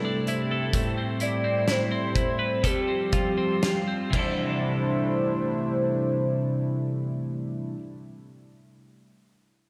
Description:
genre	dream pop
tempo	58-66 BPM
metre	4/4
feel	straight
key	C major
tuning	A4 = 441 Hz
part	warm velvety synth lead	melody	0.0-7.8 s	G4 to D5	-32 LUFS	equal	chorus, digital delay
part	warm analog pad	sustained chords	0.0-7.7 s	C3 to E4	-32 LUFS	equal	chorus
part	twelve-string electric guitar	arpeggios	0.0-7.8 s	A2 to B4	-31 LUFS	equal	subtle chorus, digital delay
part	loose indie drum kit	drums	0.3-4.4 s	crash cymbal, hi-hat, kick drum, snare drum	-31 LUFS	equal	gated reverb
room	wet lush hall reverb, RT60 2.5 s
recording	bright 1980s-style digital production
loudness	-26 LUFS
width	mono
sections	0.0-4.6 A section; 4.6-8.8 B section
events	slowing down 0.0-4.6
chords	0.0 C69; 0.7 Am9; 2.6 G9sus4; 4.1 C69

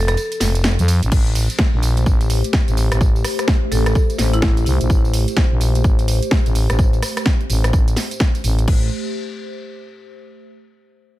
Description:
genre	bass house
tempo	127 BPM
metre	4/4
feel	swing 61% on 16ths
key	A phrygian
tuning	A4 = 440 Hz
part	marimba with hard mallets	melody	0.0-0.1, 3.7-4.8 s	E4 to A4	-27 LUFS	left 1 dB	ping-pong delay
part	dark analog pad	sustained chords	0.0-8.9 s	F3 to C5	-28 LUFS	left 1 dB	chorus, phaser, sidechain pumping
part	growling FM bass	bass	0.0-8.9 s	F1 to F2	-17 LUFS	equal	sidechain pumping
part	house drum kit	drums	0.1-8.8 s	crash cymbal, hi-hat, ride cymbal, rim click, snare drum, tambourine	-24 LUFS	equal	none
part	electronic kick drum	drums	1.1-8.8 s	none	-16 LUFS	equal	none
room	little or no reverb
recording	none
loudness	-15 LUFS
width	side -16 dB against mid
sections	0.0-1.1 A section; 1.1-8.7 B section; 8.7-10.6 C section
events	drop 0.0-1.1; kick drops out 0.2-1.1; filter sweep on FM bass 1.1-8.7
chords	0.0 F; 1.1 Am7

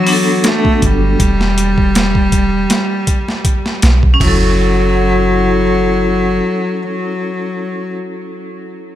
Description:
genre	trip hop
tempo	80 BPM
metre	4/4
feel	swing 55% on 16ths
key	F# phrygian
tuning	A4 = 440 Hz
part	clear cello	melody	0.0-8.0 s	F#3 to A3	-16 LUFS	left 2 dB	vintage 12-bit sampler grit, tape echo
part	vibraphone with hard mallets	accompaniment	0.0-9.0 s	F#3 to A4	-20 LUFS	equal	tremolo, tape echo
part	warbly tape-like pad	sustained chords	0.0-8.0 s	E3 to D6	-24 LUFS	right 2 dB	chorus, built-in reverb
part	boom bap sampler-style drum kit	drums	0.1-4.4 s	crash cymbal, hi-hat, kick drum, snare drum, toms	-16 LUFS	equal	overdrive
part	soft 808-style bass	bass	0.8-6.4 s	E1 to B1	-15 LUFS	equal	none
room	digital ambience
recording	none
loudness	-11 LUFS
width	side -12 dB against mid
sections	0.0-4.2 A section; 4.2-7.2 B section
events	none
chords	0.0 Em9; 4.2 F#m7

